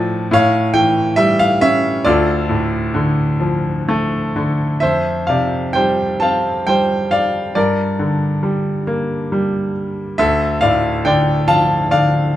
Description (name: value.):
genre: classical, lyrical solo piano.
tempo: 66 BPM.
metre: 3/4.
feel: uneven beats, rubato.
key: D harmonic minor, F major from 4.8 s.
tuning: A4 = 440 Hz.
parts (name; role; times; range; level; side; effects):
bright grand piano; solo; 0.0-12.4 s; D2 to A5; -14 LUFS; equal; none.
room: light reverb.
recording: close, detailed microphones.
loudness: -14 LUFS.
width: side -13 dB against mid.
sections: 0.0-4.8 A section; 4.8-12.4 B section.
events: none.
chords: 0.3 A7; 2.0 Dm; 4.8 Fsus2; 7.6 Gm; 10.2 Dm.